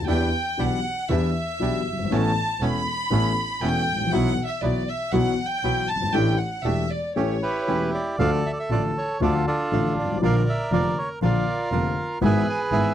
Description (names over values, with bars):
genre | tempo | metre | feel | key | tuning
tango | 119 BPM | 4/4 | rubato | unclear | A4 = 442 Hz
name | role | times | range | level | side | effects
warm chamber violin section | second line | 0.0-7.9 s | C#5 to B5 | -27 LUFS | equal | none
dark concert grand piano | accompaniment | 0.0-12.9 s | E1 to A4 | -25 LUFS | left 3 dB | none
warm double bass | bass | 0.0-12.9 s | E1 to E2 | -26 LUFS | right 2 dB | none
bandoneon | stabs | 0.1-12.9 s | F#3 to G#4 | -31 LUFS | right 8 dB | none
bandoneon | melody | 7.4-12.9 s | D4 to G#5 | -25 LUFS | right 2 dB | none
room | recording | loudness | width
little or no reverb | dry, close 1970s-style studio recording | -21 LUFS | side -10 dB against mid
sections
0.0-8.2 A section; 8.2-12.9 B section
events
violin section solo 0.0-8.2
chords
0.1 Em7; 2.1 Aadd9; 4.1 Esus2/B; 6.1 A7sus4; 7.2 A7; 8.2 Dm; 10.2 Bb; 12.2 E/G#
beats
| 0.07 0.58 1.09 1.60 | 2.11 2.61 3.11 3.62 | 4.12 4.62 5.13 5.63 | 6.14 6.64 7.16 7.67 | 8.19 8.70 9.21 9.72 | 10.22 10.72 11.22 11.72 | 12.21 12.71